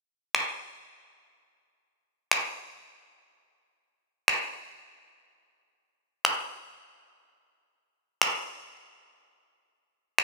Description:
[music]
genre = R&B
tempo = 61 BPM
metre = 4/4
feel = straight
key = none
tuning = none
[part]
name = electronic finger snaps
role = drums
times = 0.3-10.2 s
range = none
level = -24 LUFS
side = equal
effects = none
[sound]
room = light reverb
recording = rough home demo mix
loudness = -26 LUFS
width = side -5 dB against mid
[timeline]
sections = 0.0-10.2 A section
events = none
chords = none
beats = 0.34 1.32 2.30 | 3.29 4.27 5.25 6.24 | 7.22 8.20 9.19 10.17

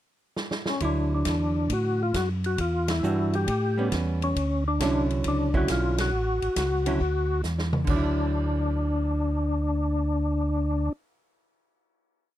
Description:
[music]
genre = soul jazz organ trio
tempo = 136 BPM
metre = 4/4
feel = swing 68% on 8ths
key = D major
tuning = A4 = 440 Hz
[part]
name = swinging big-band drum kit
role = drums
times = 0.4-8.0 s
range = crash cymbal, hi-hat, kick drum, ride cymbal, snare drum, toms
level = -32 LUFS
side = equal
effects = none
[part]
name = percussive tonewheel organ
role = melody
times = 0.7-10.9 s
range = C#4 to G4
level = -27 LUFS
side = left 2 dB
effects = slow rotary speaker, overdrive, chorus vibrato
[part]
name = archtop guitar, miked and amplified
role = accompaniment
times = 0.8-11.0 s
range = D3 to F#4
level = -30 LUFS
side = right 4 dB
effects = none
[part]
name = mellow tonewheel organ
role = bass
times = 0.8-10.9 s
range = A1 to A2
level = -27 LUFS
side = equal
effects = overdrive, chorus vibrato, slow rotary speaker
[sound]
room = little or no reverb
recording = dry, close 1970s-style studio recording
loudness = -23 LUFS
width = side -13 dB against mid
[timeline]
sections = 0.0-0.8 pickup bar; 0.8-7.9 A section; 7.9-11.4 final chord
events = drum fill 0.4-0.8, 7.4-7.9; band accent 2.8, 5.9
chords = 0.0 N.C.; 0.8 Dadd9; 2.6 Em9; 3.5 A9; 4.4 Dmaj9; 7.9 Dadd9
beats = 0.37 | 0.81 1.26 1.70 2.14 | 2.59 3.03 3.47 3.92 | 4.36 4.80 5.24 5.68 | 6.12 6.57 7.00 7.44 | 7.88 8.32 8.76 9.19 | 9.63 10.07 10.51 10.94

